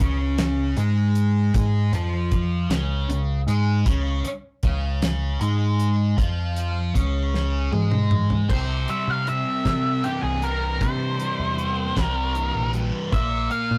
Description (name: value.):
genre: psychedelic rock.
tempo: 52 BPM (dotted quarters).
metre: 6/8.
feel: straight.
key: C phrygian dominant.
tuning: A4 = 438 Hz.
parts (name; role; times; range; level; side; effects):
thick fuzz guitar; riff; 0.0-13.8 s; Bb2 to Ab4; -29 LUFS; equal; distortion, phaser.
deep dub picked electric bass; bass; 0.0-13.8 s; Bb1 to C3; -26 LUFS; equal; none.
damped 70s drum kit; drums; 0.0-13.7 s; crash cymbal, hi-hat, kick drum, snare drum, toms; -27 LUFS; equal; none.
octave-fuzz lead guitar; melody; 8.5-13.8 s; G4 to F5; -28 LUFS; equal; distortion.
room: light reverb.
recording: rough rehearsal-room recording, warm saturation.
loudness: -23 LUFS.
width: mono.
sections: 0.0-8.5 A section; 8.5-13.8 B section.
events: drum fill 7.3-8.5.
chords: 0.0 Db5; 8.5 C; 13.1 Bb5.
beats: 0.38 | 1.54 2.70 | 3.86 5.02 | 6.17 7.33 | 8.49 9.65 | 10.80 11.96 | 13.12.